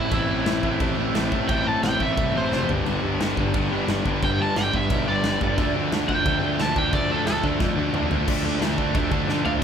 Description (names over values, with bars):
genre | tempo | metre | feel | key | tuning
punk rock | 177 BPM | 4/4 | straight | unclear | A4 = 440 Hz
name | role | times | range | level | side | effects
overdriven semi-hollow guitar | melody | 0.0-9.5 s | E4 to A5 | -26 LUFS | right 1 dB | none
crunchy overdriven guitar | riff | 0.0-9.6 s | G2 to E4 | -27 LUFS | left 6 dB | none
distorted electric guitar | riff | 0.0-9.6 s | G2 to D4 | -29 LUFS | right 9 dB | distortion
high-gain distorted guitar | riff | 0.0-9.6 s | G2 to D4 | -30 LUFS | equal | distortion
fuzz picked electric bass | bass | 0.0-9.6 s | F1 to D3 | -28 LUFS | equal | overdrive
big rock drum kit | drums | 0.1-9.5 s | crash cymbal, kick drum, snare drum, toms | -27 LUFS | right 1 dB | none
room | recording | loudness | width
light reverb | band playing live in one room | -20 LUFS | side -8 dB against mid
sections
0.0-8.3 A section; 8.3-9.6 B section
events
overdriven electric guitar solo 0.0-8.3; drum fill 2.5-2.9, 7.6-8.3, 9.3-9.6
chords
0.0 Am; 2.7 G; 5.6 Dm